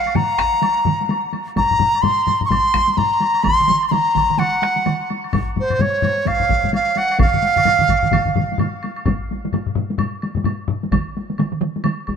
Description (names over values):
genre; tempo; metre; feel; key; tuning
japanese traditional, taiko drum ensemble; 128 BPM; 4/4; swing 60% on 16ths; F miyako bushi; A4 = 440 Hz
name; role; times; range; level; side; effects
bright large dizi; melody; 0.0-8.6 s; C5 to Db6; -17 LUFS; right 1 dB; none
solo taiko drums; percussion; 0.1-10.8 s; none; -23 LUFS; left 6 dB; none
taiko ensemble; percussion; 0.1-12.2 s; none; -25 LUFS; left 1 dB; none
taiko ensemble; percussion; 0.1-12.0 s; none; -23 LUFS; right 5 dB; none
woodblock; percussion; 0.1-12.2 s; none; -32 LUFS; equal; none
taiko ensemble; percussion; 0.4-12.2 s; none; -24 LUFS; equal; none
room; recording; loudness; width
moderate huge ambient reverb, RT60 4.2 s; minimal, uncompressed stereo recording; -16 LUFS; side -7 dB against mid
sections
0.0-9.1 A section; 9.1-12.2 B section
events
none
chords
none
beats
0.15 0.62 1.09 | 1.57 2.04 2.51 2.98 | 3.45 3.92 4.39 4.86 | 5.33 5.79 6.26 6.73 | 7.20 7.67 8.13 8.60 | 9.06 9.53 9.99 10.46 | 10.92 11.38 11.85